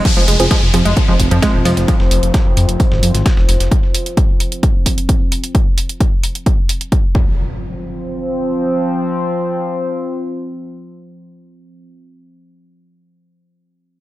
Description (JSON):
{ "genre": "driving peak-time techno", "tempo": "131 BPM", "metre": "4/4", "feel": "straight", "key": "F minor", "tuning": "A4 = 440 Hz", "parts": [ { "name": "analog pluck", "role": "riff", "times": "0.0-1.7 s", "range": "F3 to Ab3", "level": "-18 LUFS", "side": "right 1 dB", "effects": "chorus, tube saturation, sidechain pumping, tape echo" }, { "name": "wavetable chord stab", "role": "stabs", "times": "0.0-0.8 s", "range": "F3 to Ab4", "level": "-21 LUFS", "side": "right 2 dB", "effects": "sidechain pumping, dub echo" }, { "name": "dark detuned saw bass", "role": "bass", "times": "0.0-3.7 s", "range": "Eb1 to F2", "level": "-16 LUFS", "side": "equal", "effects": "sidechain pumping" }, { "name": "analog drone", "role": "drone", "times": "0.9-11.8 s", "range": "F3 to C4", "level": "-21 LUFS", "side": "equal", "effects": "chorus, sidechain pumping" }, { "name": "dusty soul sampler-style drum kit", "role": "drums", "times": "0.1-3.7 s", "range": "hi-hat, snare drum", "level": "-29 LUFS", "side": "equal", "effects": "high-pass filter on snare, high-pass filter on hats, tape echo" }, { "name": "electronic kick drum", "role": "drums", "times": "0.1-7.2 s", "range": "none", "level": "-14 LUFS", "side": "equal", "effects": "none" }, { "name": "techno drum kit", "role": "drums", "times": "0.1-7.0 s", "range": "crash cymbal, hi-hat", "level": "-22 LUFS", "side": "right 2 dB", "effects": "sidechain pumping on hats, sidechain pumping on cymbals" }, { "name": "downlifter and impact", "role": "sound effects", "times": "0.1-3.7, 7.2-12.1 s", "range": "none", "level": "-24 LUFS", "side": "equal", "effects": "none" } ], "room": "light reverb", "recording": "echo-heavy mix", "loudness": "-13 LUFS", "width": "side -16 dB against mid", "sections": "0.1-7.4 A section; 7.4-11.0 B section", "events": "none", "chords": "0.1 Fm; 7.1 F5", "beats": "| 0.05 0.51 0.97 1.42 | 1.88 2.34 2.80 3.26 | 3.71 4.17 4.63 5.09 | 5.55 6.00 6.46 6.92 | 7.38 7.84 8.29 8.75 | 9.21 9.67 10.13 10.58" }